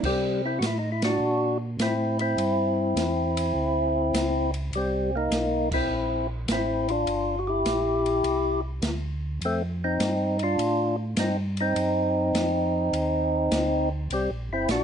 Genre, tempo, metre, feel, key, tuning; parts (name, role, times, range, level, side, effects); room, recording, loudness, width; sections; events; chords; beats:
soul jazz organ trio; 102 BPM; 4/4; swing 68% on 8ths; C mixolydian; A4 = 440 Hz
mellow tonewheel organ; bass; 0.0-14.8 s; G1 to C3; -30 LUFS; right 1 dB; slow rotary speaker
open jazz drum kit; drums; 0.0-14.8 s; crash cymbal, hi-hat, kick drum, ride cymbal, snare drum; -31 LUFS; equal
percussive tonewheel organ; melody; 0.1-14.8 s; G3 to G4; -24 LUFS; left 1 dB; slow rotary speaker, overdrive
light reverb; nothing above 10.4 kHz; -23 LUFS; side -8 dB against mid
0.0-14.8 A section
band accent 0.9, 5.6
0.0 C9; 7.1 Gm; 8.2 Cadd9; 9.4 F9; 11.8 D7b9; 14.1 C9
| 0.03 0.62 1.21 1.79 | 2.38 2.97 3.55 4.14 | 4.73 5.32 5.90 6.49 | 7.08 7.66 8.25 8.83 | 9.42 10.01 10.59 11.18 | 11.76 12.35 12.93 13.52 | 14.10 14.69